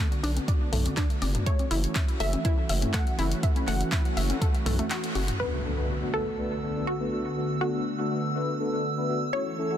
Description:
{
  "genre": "progressive house",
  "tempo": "122 BPM",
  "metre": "4/4",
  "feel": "straight",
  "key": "B minor",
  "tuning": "A4 = 440 Hz",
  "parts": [
    { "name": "wide unison pluck", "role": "melody", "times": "0.0-9.8 s", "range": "F#4 to F#5", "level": "-35 LUFS", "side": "equal", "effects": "sidechain pumping, dub echo" },
    { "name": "warm analog pad", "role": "sustained chords", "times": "0.0-9.8 s", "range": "D3 to F#4", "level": "-34 LUFS", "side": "right 2 dB", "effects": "chorus, sidechain pumping" },
    { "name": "analog pluck", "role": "arpeggios", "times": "0.0-5.2 s", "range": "A3 to E5", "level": "-34 LUFS", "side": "left 1 dB", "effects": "chorus, sidechain pumping, dub echo" },
    { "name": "deep house drum kit", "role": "drums", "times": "0.1-5.4 s", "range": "handclaps, hi-hat", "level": "-35 LUFS", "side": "left 1 dB", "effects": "none" },
    { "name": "round analog bass", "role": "bass", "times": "0.2-5.3 s", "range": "F#1 to B1", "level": "-27 LUFS", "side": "equal", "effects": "sidechain pumping" },
    { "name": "electronic congas and toms", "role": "percussion", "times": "0.4-5.4 s", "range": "none", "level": "-35 LUFS", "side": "left 4 dB", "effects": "overdrive, sidechain pumping on perc, sidechain pumping on toms" },
    { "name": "electronic kick drum", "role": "drums", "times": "0.5-4.5 s", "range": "none", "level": "-25 LUFS", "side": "equal", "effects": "none" },
    { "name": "soft supersaw", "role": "stabs", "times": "5.4-9.8 s", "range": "A3 to B4", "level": "-30 LUFS", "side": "left 2 dB", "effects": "sidechain pumping, low-pass filter, dub echo" },
    { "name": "impact", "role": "sound effects", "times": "5.4-7.4 s", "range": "none", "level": "-34 LUFS", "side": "equal", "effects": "none" },
    { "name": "drifting glass-harmonics texture", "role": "texture", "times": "6.1-9.8 s", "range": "E6", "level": "-36 LUFS", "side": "right 2 dB", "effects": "chorus, built-in reverb, sidechain pumping" }
  ],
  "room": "light reverb",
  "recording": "dense, heavily limited modern master",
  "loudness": "-25 LUFS",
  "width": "side -10 dB against mid",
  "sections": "0.0-5.4 A section; 5.4-9.8 B section",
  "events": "filter sweep on synth arpeggio sound 0.0-5.4; filter sweep on analog synth pad 0.0-5.4; break 4.9-5.4; band accent 4.9; impact 5.4-7.4",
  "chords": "0.0 Bm7; 1.5 F#m7; 5.4 Bm7"
}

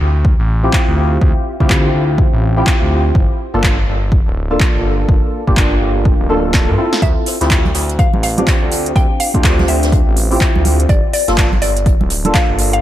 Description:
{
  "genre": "deep house",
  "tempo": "124 BPM",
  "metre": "4/4",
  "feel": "swing 61% on 16ths",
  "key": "D minor",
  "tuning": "A4 = 440 Hz",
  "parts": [
    { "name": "smooth synth bass", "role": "bass", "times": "0.0-12.8 s", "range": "D1 to G2", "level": "-17 LUFS", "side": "equal", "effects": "sidechain pumping" },
    { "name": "electronic kick drum", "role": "drums", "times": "0.2-12.5 s", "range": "none", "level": "-14 LUFS", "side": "equal", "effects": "none" },
    { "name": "percussive organ stab", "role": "stabs", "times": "0.6-12.8 s", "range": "Bb3 to A4", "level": "-18 LUFS", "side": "equal", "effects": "ensemble chorus, sidechain pumping, diffuse ambient delay" },
    { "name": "deep house drum kit", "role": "drums", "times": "0.7-12.8 s", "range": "handclaps, hi-hat, snare drum", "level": "-20 LUFS", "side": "equal", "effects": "none" },
    { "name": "mallet-like synth pluck", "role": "melody", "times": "7.0-12.8 s", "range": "D5 to G5", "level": "-22 LUFS", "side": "left 2 dB", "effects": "chorus, vintage 12-bit sampler grit, ping-pong delay" },
    { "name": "jazz brush drum kit", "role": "drums", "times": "7.0-12.7 s", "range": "hi-hat, snare drum", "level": "-29 LUFS", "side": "right 2 dB", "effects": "sidechain pumping on hats, high-pass filter on hats, high-pass filter on snare, high-pass filter on room" },
    { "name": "congas", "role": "percussion", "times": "7.7-12.3 s", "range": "none", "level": "-23 LUFS", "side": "right 3 dB", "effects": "none" }
  ],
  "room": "light reverb",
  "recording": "none",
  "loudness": "-11 LUFS",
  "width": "side -13 dB against mid",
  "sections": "0.0-12.8 A section",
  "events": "drum fill 6.5-7.0",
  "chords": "0.0 Dm11; 3.2 Gm9; 7.0 Dm11; 10.9 Gm9"
}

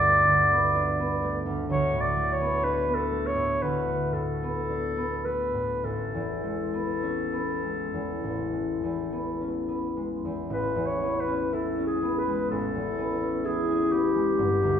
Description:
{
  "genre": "classical, impressionist duo for clarinet and harp",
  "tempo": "50-66 BPM",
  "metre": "4/4",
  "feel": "rubato",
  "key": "A major",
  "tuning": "A4 = 440 Hz",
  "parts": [
    { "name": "warm clarinet", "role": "melody", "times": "0.0-14.8 s", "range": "G4 to D5", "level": "-26 LUFS", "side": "left 1 dB", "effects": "none" },
    { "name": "concert harp", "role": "accompaniment", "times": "0.0-14.8 s", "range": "G1 to E4", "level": "-28 LUFS", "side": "equal", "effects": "none" }
  ],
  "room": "wet recital hall reverb, RT60 1.7 s",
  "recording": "heard from further back in the room",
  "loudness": "-24 LUFS",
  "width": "side -8 dB against mid",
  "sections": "0.0-10.5 A section; 10.5-14.8 A section",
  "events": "none",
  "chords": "0.0 Gadd9; 1.7 D5; 5.8 Amaj9"
}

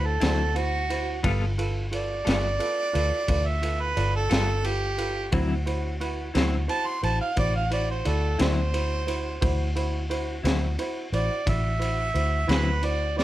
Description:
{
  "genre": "slow blues",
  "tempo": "59 BPM (dotted quarters)",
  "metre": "12/8",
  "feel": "straight",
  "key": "D mixolydian",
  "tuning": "A4 = 439 Hz",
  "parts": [
    { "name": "warm harmonica", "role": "second line", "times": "0.0-13.2 s", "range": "F#4 to C6", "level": "-28 LUFS", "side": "right 2 dB", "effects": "overdrive" },
    { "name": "warm upright piano", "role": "accompaniment", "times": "0.0-13.2 s", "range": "E4 to D5", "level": "-33 LUFS", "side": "right 3 dB", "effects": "none" },
    { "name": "vintage muted fingered electric bass", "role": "bass", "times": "0.0-13.2 s", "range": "G1 to D2", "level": "-27 LUFS", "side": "equal", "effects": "none" },
    { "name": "clean electric guitar", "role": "accompaniment", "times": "0.2-12.7 s", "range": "D3 to A4", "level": "-29 LUFS", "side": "left 4 dB", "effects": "tremolo" },
    { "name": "crunchy breakbeat drum kit", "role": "drums", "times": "0.2-13.2 s", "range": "kick drum, ride cymbal, snare drum", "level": "-30 LUFS", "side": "equal", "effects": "none" }
  ],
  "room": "light reverb",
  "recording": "none",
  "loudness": "-23 LUFS",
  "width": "side -14 dB against mid",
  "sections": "0.0-13.2 A section",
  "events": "harmonica solo 0.0-13.2",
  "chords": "0.0 D9; 1.2 G9; 5.3 D9"
}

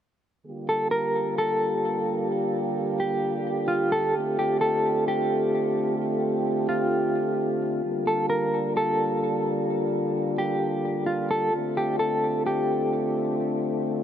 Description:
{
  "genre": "hip hop",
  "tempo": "130 BPM",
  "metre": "4/4",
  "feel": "half-time",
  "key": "G minor",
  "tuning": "A4 = 440 Hz",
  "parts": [
    { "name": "dark French horn section", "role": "sustained chords", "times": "0.5-14.0 s", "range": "D3 to G4", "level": "-26 LUFS", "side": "equal", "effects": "none" },
    { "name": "mellow electric guitar", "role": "melody", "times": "0.7-13.3 s", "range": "F4 to Bb4", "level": "-26 LUFS", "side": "equal", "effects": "tremolo, ping-pong delay" }
  ],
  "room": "moderate huge ambient reverb, RT60 9.2 s",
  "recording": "none",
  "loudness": "-23 LUFS",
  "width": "side -9 dB against mid",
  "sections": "0.5-14.0 A section",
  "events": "none",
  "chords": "0.5 Gm9; 4.1 Dm7; 7.8 Gm9; 11.5 Dm7"
}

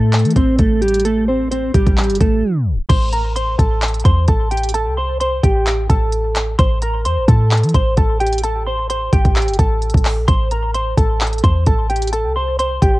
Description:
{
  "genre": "hip hop, trap",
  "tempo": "130 BPM",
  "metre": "4/4",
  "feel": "half-time",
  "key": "A phrygian",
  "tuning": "A4 = 440 Hz",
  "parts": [
    { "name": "mellow electric guitar", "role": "melody", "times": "0.0-13.0 s", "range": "G3 to C6", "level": "-19 LUFS", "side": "equal", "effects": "analog chorus, analog delay" },
    { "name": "clean 808-style bass", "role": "bass", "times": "0.0-13.0 s", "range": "G1 to E3", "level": "-17 LUFS", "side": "equal", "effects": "none" },
    { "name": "trap drum kit", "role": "drums", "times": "0.1-12.9 s", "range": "crash cymbal, handclaps, hi-hat, kick drum", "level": "-17 LUFS", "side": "equal", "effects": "cassette tape" }
  ],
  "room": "little or no reverb",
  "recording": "home recording on cassette, tape stop",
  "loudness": "-14 LUFS",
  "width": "side -18 dB against mid",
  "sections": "0.0-2.9 A section; 2.9-13.0 B section",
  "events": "break 2.4-2.9; tape stop 2.4-2.9",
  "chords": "0.0 Am"
}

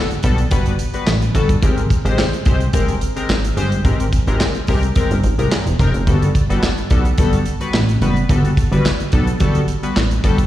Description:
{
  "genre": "early-eighties boogie funk",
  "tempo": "108 BPM",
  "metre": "4/4",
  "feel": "straight",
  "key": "G major",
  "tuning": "A4 = 440 Hz",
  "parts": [
    { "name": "modern studio drum kit", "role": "drums", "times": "0.1-10.5 s", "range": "handclaps, hi-hat, kick drum, snare drum", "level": "-18 LUFS", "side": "equal", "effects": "none" },
    { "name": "chorused polysynth", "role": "accompaniment", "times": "0.2-10.4 s", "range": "G3 to C5", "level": "-22 LUFS", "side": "left 3 dB", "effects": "slapback echo" },
    { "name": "plucky analog bass", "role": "bass", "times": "0.2-10.5 s", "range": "E1 to C2", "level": "-16 LUFS", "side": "equal", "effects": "none" }
  ],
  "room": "little or no reverb",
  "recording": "live gig heard through the venue's PA, recital hall reverb",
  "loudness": "-14 LUFS",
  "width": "side -13 dB against mid",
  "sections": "0.0-10.5 A section",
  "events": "none",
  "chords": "0.0 Gmaj9; 1.6 Abmaj9; 6.1 Gmaj9"
}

